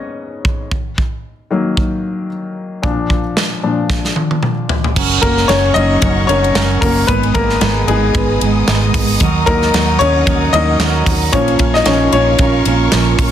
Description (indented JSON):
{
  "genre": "piano-driven pop",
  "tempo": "113 BPM",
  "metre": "4/4",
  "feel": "swing 56% on 16ths",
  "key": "Eb minor",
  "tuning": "A4 = 440 Hz",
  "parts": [
    { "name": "clear upright piano", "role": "accompaniment", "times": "0.0-13.3 s", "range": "Ab2 to Eb5", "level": "-16 LUFS", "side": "left 4 dB", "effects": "none" },
    { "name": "modern studio drum kit", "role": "drums", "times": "0.4-13.3 s", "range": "crash cymbal, hi-hat, kick drum, ride cymbal, snare drum, toms", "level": "-17 LUFS", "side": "equal", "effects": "none" },
    { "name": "warm studio string section", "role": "sustained chords", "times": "5.0-13.3 s", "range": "Ab4 to Eb6", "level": "-24 LUFS", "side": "left 2 dB", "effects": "none" },
    { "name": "fingerpicked steel-string acoustic guitar", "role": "riff", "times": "5.0-13.3 s", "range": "Ab2 to Cb5", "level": "-19 LUFS", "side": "right 7 dB", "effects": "none" },
    { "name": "vintage muted fingered electric bass", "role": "bass", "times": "5.0-13.3 s", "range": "Gb1 to Eb2", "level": "-17 LUFS", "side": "right 1 dB", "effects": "none" }
  ],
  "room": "moderate large studio reverb, RT60 1.0 s, studio reverb",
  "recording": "dense, heavily limited modern master",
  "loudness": "-12 LUFS",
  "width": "side -10 dB against mid",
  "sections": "0.0-5.0 A section; 5.0-13.3 B section",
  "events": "upright piano solo 0.0-5.0, 5.0-13.3; drum fill 3.9-5.0",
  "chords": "0.0 Abm; 0.7 Ebm; 2.8 Bb; 5.0 Gb; 7.1 Abm; 9.2 Ebm; 11.3 Bbm"
}